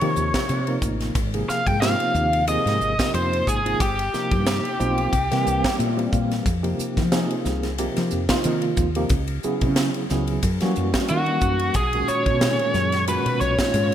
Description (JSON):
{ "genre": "electric jazz fusion", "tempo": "91 BPM", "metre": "4/4", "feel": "swing 55% on 16ths", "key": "unclear", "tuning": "A4 = 440 Hz", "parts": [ { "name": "biting lead guitar", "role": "melody", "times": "0.0-5.8, 11.1-13.9 s", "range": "Gb4 to G5", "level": "-23 LUFS", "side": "equal", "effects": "overdrive" }, { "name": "overdriven tine electric piano", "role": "accompaniment", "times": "0.0-13.9 s", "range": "Bb2 to G5", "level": "-26 LUFS", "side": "right 1 dB", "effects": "fast tremolo, analog chorus" }, { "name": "woody fretless electric bass", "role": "bass", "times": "0.0-13.9 s", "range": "G1 to Gb3", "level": "-24 LUFS", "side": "left 1 dB", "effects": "lush chorus" }, { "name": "crisp fusion drum kit", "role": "drums", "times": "0.0-13.9 s", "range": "hi-hat, kick drum, ride cymbal, snare drum", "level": "-26 LUFS", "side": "equal", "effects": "gated reverb" } ], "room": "light reverb, studio reverb", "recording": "bright 1980s-style digital production", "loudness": "-19 LUFS", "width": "side -10 dB against mid", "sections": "0.0-13.9 A section", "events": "tine electric piano fill 5.1-6.5", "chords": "0.0 Eb13; 1.2 Ab69; 3.8 G7alt; 5.1 C7; 6.5 Fm11; 9.1 Dbm7; 10.4 Gb7b9; 11.8 B69" }